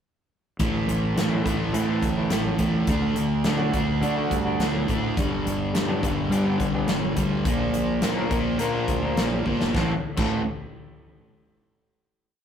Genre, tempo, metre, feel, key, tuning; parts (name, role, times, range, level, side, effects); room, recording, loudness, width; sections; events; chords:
quiet-loud alternative rock; 105 BPM; 4/4; straight; A4 = 440 Hz
crunchy overdriven guitar; riff; 0.6-10.4 s; G2 to D4; -25 LUFS; right 1 dB; spring reverb
fuzz fingered electric bass; bass; 0.6-10.4 s; G1 to D3; -29 LUFS; equal; overdrive
big rock drum kit; drums; 0.6-10.3 s; crash cymbal, hi-hat, kick drum, snare drum; -28 LUFS; left 1 dB
electric guitar through a small old amp; arpeggios; 0.7-10.4 s; A2 to Bb4; -30 LUFS; left 1 dB
moderate studio reverb, RT60 0.6 s; rough rehearsal-room recording, tube saturation; -22 LUFS; side -8 dB against mid
0.6-9.7 verse; 9.7-12.0 final chord
drum fill 9.5
0.6 Am; 2.9 D; 5.2 G; 7.5 Bb; 9.7 Am